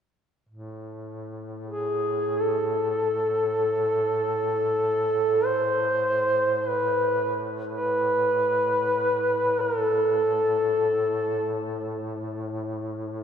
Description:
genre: caucasian folk, Caucasian lament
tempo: free time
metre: none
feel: none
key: A harmonic minor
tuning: A4 = 438 Hz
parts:
  - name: warm duduk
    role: drone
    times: 0.5-13.2 s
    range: A2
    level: -33 LUFS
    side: left 1 dB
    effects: none
  - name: mellow duduk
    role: melody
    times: 1.7-11.7 s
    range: G#4 to C5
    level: -22 LUFS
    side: equal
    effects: ping-pong delay
room: wet lush hall reverb, RT60 2.6 s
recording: dreamy mix soaked in reverb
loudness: -22 LUFS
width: side -8 dB against mid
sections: 0.5-13.2 A section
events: none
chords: none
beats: free time

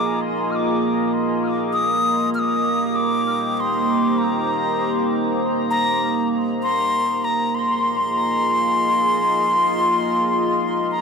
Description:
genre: ambient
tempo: free time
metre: none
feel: none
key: unclear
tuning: A4 = 440 Hz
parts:
  - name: bright wooden flute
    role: melody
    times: 0.0-11.0 s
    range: Bb5 to F6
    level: -20 LUFS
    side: left 1 dB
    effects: dub echo
  - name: deep dark ambient pad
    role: sustained chords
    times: 0.0-11.0 s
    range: Bb3 to Bb5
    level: -21 LUFS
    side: right 1 dB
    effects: chorus, built-in reverb
room: wet spring reverb, RT60 1.4 s, small room ambience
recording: echo-heavy mix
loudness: -18 LUFS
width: side -5 dB against mid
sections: 0.0-11.0 A section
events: none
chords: 0.0 Fm7; 1.7 Cm7; 6.6 Fm7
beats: free time

